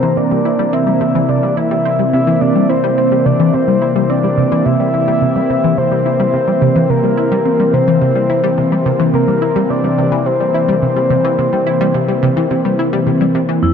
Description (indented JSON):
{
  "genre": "ambient, sequencer-driven space music",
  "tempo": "107 BPM",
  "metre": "4/4",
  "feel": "straight",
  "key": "unclear",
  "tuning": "A4 = 440 Hz",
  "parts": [
    { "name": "soft octave-layered synth lead", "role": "melody", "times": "0.0-13.1 s", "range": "Bb4 to E5", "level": "-16 LUFS", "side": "left 2 dB", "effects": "chorus, ping-pong delay" },
    { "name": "sweeping resonant pad", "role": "sustained chords", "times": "0.0-13.7 s", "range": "C3 to C4", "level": "-16 LUFS", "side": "equal", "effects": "chorus" },
    { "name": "tight sequenced synth", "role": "riff", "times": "0.0-13.7 s", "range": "F2 to E4", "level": "-17 LUFS", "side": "equal", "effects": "chorus, phaser, ping-pong delay" },
    { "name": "vibraphone with medium mallets", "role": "arpeggios", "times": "13.6-13.7 s", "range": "E4", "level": "-14 LUFS", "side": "left 2 dB", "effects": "auto-pan, low-pass filter" },
    { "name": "fat analog bass", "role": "bass", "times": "13.6-13.7 s", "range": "none", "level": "barely audible", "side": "none", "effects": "none" }
  ],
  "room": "wet huge ambient reverb, RT60 9.2 s",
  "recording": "dark, warm production",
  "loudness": "-12 LUFS",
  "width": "side -7 dB against mid",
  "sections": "0.0-13.6 A section",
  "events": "none",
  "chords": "0.0 C7"
}